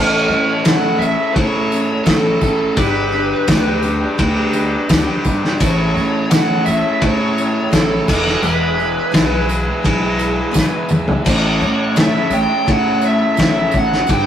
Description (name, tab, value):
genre	folk rock and heartland rock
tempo	85 BPM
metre	4/4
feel	straight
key	A mixolydian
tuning	A4 = 440 Hz
part	bluesy overdriven lead guitar	melody	0.0-14.3 s	A4 to G5	-20 LUFS	equal	distortion
part	picked steel-string acoustic guitar	accompaniment	0.0-14.3 s	A2 to C#5	-23 LUFS	left 2 dB	none
part	accordion	sustained chords	0.0-14.3 s	A4 to E6	-27 LUFS	right 1 dB	light tremolo tuning
part	crunchy overdriven guitar	riff	0.0-14.3 s	E2 to A4	-23 LUFS	right 2 dB	none
part	upright bass	bass	0.0-14.3 s	E1 to A2	-22 LUFS	equal	none
part	tambourine	percussion	0.3-14.2 s	none	-34 LUFS	right 4 dB	none
part	cloth-damped thuddy drum kit	drums	0.7-14.3 s	crash cymbal, kick drum, ride cymbal, snare drum, toms	-17 LUFS	equal	none
room	moderate studio reverb, RT60 0.7 s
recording	rough rehearsal-room recording, warm saturation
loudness	-13 LUFS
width	side -10 dB against mid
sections	0.0-14.3 A section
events	drum fill 10.5-11.3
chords	0.0 A; 2.8 G; 5.6 A; 8.1 E; 11.3 A